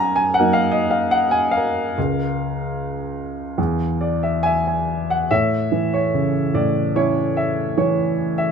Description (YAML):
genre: classical, lyrical solo piano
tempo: 67-79 BPM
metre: 4/4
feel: rubato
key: A major from 5.3 s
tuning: A4 = 441 Hz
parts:
  - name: warm baby grand piano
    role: solo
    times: 0.0-8.5 s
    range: Db2 to Bb5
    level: -18 LUFS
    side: equal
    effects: none
room: light reverb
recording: close, detailed microphones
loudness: -18 LUFS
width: side -6 dB against mid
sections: 0.0-5.3 A section; 5.3-8.5 B section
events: grand piano fill 3.6-5.3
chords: 0.0 Gb6; 2.0 Db6; 3.6 Bb7#11/E; 5.3 A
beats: 0.39 1.17 | 1.97 2.76 3.58 4.44 | 5.30 6.13 6.95 7.76